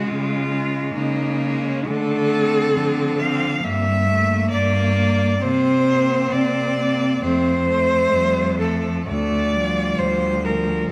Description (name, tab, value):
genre	classical, lyrical piece for cello ensemble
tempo	61-69 BPM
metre	4/4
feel	rubato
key	unclear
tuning	A4 = 438 Hz
part	rich cello	melody	0.0-10.9 s	Db4 to F5	-24 LUFS	equal	none
part	clear cello	second line	0.0-10.9 s	F3 to C4	-31 LUFS	equal	none
part	clear cello	accompaniment	0.0-10.9 s	F3 to C4	-27 LUFS	equal	none
part	rich cello	bass	0.1-10.8 s	D2 to D3	-25 LUFS	equal	none
room	moderate concert hall reverb, RT60 2.4 s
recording	none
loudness	-20 LUFS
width	mono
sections	0.0-10.9 A section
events	none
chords	0.0 Db; 1.9 Dm7; 3.6 Gm; 5.4 Bbadd9/C; 7.2 F; 9.1 Dm